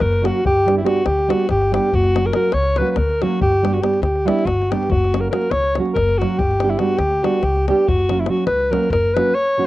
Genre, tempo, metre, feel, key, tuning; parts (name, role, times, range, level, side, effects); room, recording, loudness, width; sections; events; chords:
balkan folk, Balkan wedding band; 283 BPM (eighths); 7/8; straight; F# phrygian dominant; A4 = 439 Hz
clear alto saxophone; melody; 0.0-9.7 s; E4 to C#5; -18 LUFS; left 1 dB; cassette tape
upright bass; bass; 0.0-9.2 s; F#1 to D2; -22 LUFS; left 1 dB
davul; percussion; 0.0-9.3 s; -25 LUFS; left 4 dB
nylon-string guitar; accompaniment; 0.2-9.7 s; F#3 to G4; -21 LUFS; right 4 dB; cassette tape
light reverb, small room ambience; home recording on cassette; -15 LUFS; side -16 dB against mid
0.0-9.7 A section
0.4 G; 1.9 F#; 3.4 G; 4.9 F#; 6.4 G; 7.9 F#